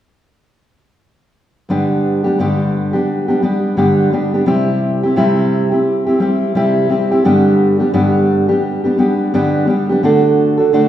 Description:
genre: pop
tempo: 86 BPM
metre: 4/4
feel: swing 60% on 16ths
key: G major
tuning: A4 = 443 Hz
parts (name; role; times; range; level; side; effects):
- fingerpicked steel-string acoustic guitar; accompaniment; 1.7-10.9 s; G2 to A4; -12 LUFS; equal; none
room: wet recital hall reverb, RT60 1.4 s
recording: recorded in a church or concert hall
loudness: -12 LUFS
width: side -11 dB against mid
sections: 1.7-10.9 A section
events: none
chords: 1.7 G; 4.5 C; 7.3 G; 10.0 D

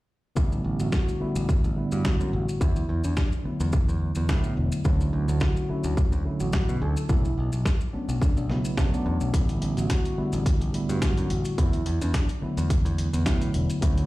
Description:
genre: nu-disco, nu disco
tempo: 107 BPM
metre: 4/4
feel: swing 55% on 16ths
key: unclear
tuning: A4 = 440 Hz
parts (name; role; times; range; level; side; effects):
- tine electric piano; accompaniment; 0.4-14.1 s; C#3 to E4; -29 LUFS; equal; overdrive, auto-pan, sidechain pumping
- modern bright picked electric bass; bass; 0.4-14.1 s; E1 to B2; -27 LUFS; equal; none
- electronic kick drum; drums; 0.4-13.9 s; none; -23 LUFS; equal; none
- maracas; percussion; 0.4-14.1 s; none; -44 LUFS; left 2 dB; none
- soft octave-layered synth lead; melody; 0.8-13.7 s; B3 to A4; -35 LUFS; left 1 dB; chorus, tape echo
- dusty soul sampler-style drum kit; drums; 0.9-14.1 s; hi-hat, snare drum; -34 LUFS; equal; none
room: little or no reverb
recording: played on a big sound system in a bare room, large studio reverb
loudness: -23 LUFS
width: side -18 dB against mid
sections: 0.4-14.1 A section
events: none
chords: 0.4 A9sus4; 2.6 E9sus4; 4.9 Dmaj9; 7.1 Bm9; 9.3 A9sus4; 11.6 E9sus4

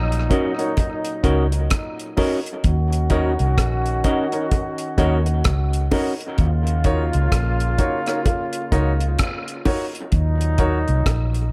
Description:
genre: dub reggae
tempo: 64 BPM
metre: 4/4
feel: swing 61% on 16ths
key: Eb minor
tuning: A4 = 440 Hz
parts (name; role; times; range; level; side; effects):
- clear trombone section; second line; 0.0-11.5 s; Bb2 to Gb4; -29 LUFS; equal; tape echo
- vintage muted fingered electric bass; bass; 0.0-11.5 s; Bb1 to Eb2; -22 LUFS; equal; none
- deep reggae drum kit; drums; 0.1-11.5 s; hi-hat, kick drum, rim click; -24 LUFS; equal; none
- semi-hollow electric guitar; accompaniment; 0.3-6.1 s; Db4 to Eb5; -29 LUFS; equal; tape echo
- dark upright piano; stabs; 0.3-10.8 s; Eb4 to Db5; -29 LUFS; equal; tape echo
- bongos; percussion; 0.3-11.3 s; none; -34 LUFS; equal; none
room: light reverb, small room ambience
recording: none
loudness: -21 LUFS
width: mono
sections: 0.0-11.5 A section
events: none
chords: 0.0 Ebm7

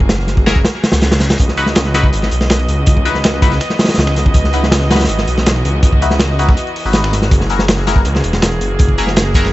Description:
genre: drum and bass, jungle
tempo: 162 BPM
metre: 4/4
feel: straight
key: C# dorian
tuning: A4 = 441 Hz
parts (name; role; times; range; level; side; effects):
- rich chamber string section; sustained chords; 0.0-9.5 s; E3 to D#5; -22 LUFS; equal; vintage 12-bit sampler grit
- detuned saw bass; bass; 0.0-9.5 s; E1 to C#2; -16 LUFS; equal; none
- crunchy breakbeat drum kit; drums; 0.0-9.5 s; hi-hat, kick drum, snare drum; -13 LUFS; equal; none
- band-passed chord stab; stabs; 0.5-9.5 s; D#4 to B4; -20 LUFS; left 3 dB; phaser, dub echo
- reverse cymbal; sound effects; 0.8-1.4 s; none; -27 LUFS; left 1 dB; none
- breakbeat sampler-style drum kit; drums; 1.4-9.5 s; hi-hat, snare drum; -26 LUFS; right 1 dB; none
room: studio reverb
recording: nothing above 7.9 kHz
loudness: -11 LUFS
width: side -16 dB against mid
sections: 0.0-9.5 A section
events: reverse cymbal 0.8-1.4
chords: 0.0 F#9; 1.4 C#m11; 7.3 F#9

